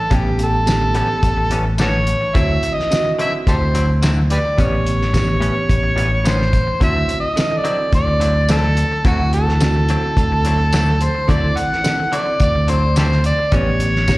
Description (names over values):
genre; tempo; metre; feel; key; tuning
straight-eighth soul blues; 107 BPM; 4/4; straight; unclear; A4 = 440 Hz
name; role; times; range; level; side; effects
overdriven harmonica; melody; 0.0-14.2 s; F#4 to F#5; -19 LUFS; equal; plate reverb, slapback echo
bell-like tine electric piano; accompaniment; 0.1-14.2 s; B3 to A4; -26 LUFS; right 3 dB; plate reverb, slapback echo
direct-recorded clean electric guitar; stabs; 0.1-14.1 s; A2 to E4; -28 LUFS; left 3 dB; wide subtle chorus, plate reverb, slapback echo
fingered electric bass; bass; 0.1-14.2 s; A1 to D2; -17 LUFS; equal; none
cloth-damped thuddy drum kit; drums; 0.1-14.2 s; hi-hat, kick drum, snare drum, tambourine; -20 LUFS; equal; none
room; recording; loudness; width
light reverb; live gig heard through the venue's PA, recital hall reverb; -14 LUFS; side -19 dB against mid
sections
0.0-14.2 A section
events
none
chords
0.0 A9; 2.3 D9; 4.6 A9; 6.8 D9; 13.5 A9